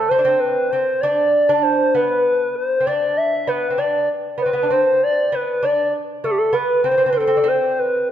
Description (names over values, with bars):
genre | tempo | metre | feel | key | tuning
Persian modal ensemble | 65 BPM (dotted quarters) | 6/8 | straight | unclear | A4 = 440 Hz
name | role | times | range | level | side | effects
reedy FM lead | melody | 0.0-8.1 s | G4 to E5 | -17 LUFS | left 1 dB | chorus
lute | second line | 0.0-8.1 s | A3 to D4 | -23 LUFS | right 5 dB | none
room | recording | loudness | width
moderate concert hall reverb, RT60 1.9 s | dark, warm production | -16 LUFS | side -10 dB against mid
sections
0.0-8.1 A section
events
none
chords
none